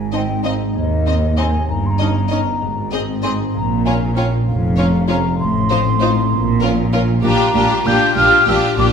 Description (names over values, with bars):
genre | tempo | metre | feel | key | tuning
cinematic, playful, whimsical film cue | 65 BPM (dotted quarters) | 6/8 | straight | Ab major | A4 = 440 Hz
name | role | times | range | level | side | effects
concert harp | arpeggios | 0.0-8.9 s | G2 to C5 | -23 LUFS | left 5 dB | none
rich studio cello section | bass | 0.0-8.9 s | Eb2 to Bb2 | -20 LUFS | right 2 dB | none
warm studio double bass section | bass | 0.0-8.9 s | F1 to Eb2 | -21 LUFS | right 3 dB | none
rich studio violin section | melody | 0.1-8.9 s | G4 to Eb5 | -23 LUFS | left 3 dB | none
clear studio violin section | second line | 0.1-8.9 s | Eb4 to Ab4 | -25 LUFS | left 2 dB | none
mellow hollow wooden flute | second line | 0.1-8.9 s | Eb5 to G6 | -20 LUFS | equal | none
rich studio viola section | accompaniment | 0.1-8.9 s | C4 to Eb4 | -26 LUFS | right 1 dB | none
room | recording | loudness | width
wet scoring stage reverb, RT60 1.7 s | minimal, uncompressed stereo recording | -14 LUFS | side -7 dB against mid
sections
0.0-8.9 A section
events
none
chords
0.0 Ab; 1.7 Eb7/G; 2.6 Ab; 3.5 Bbm; 5.4 F7/A; 6.3 Bbm; 7.2 Gm7/Bb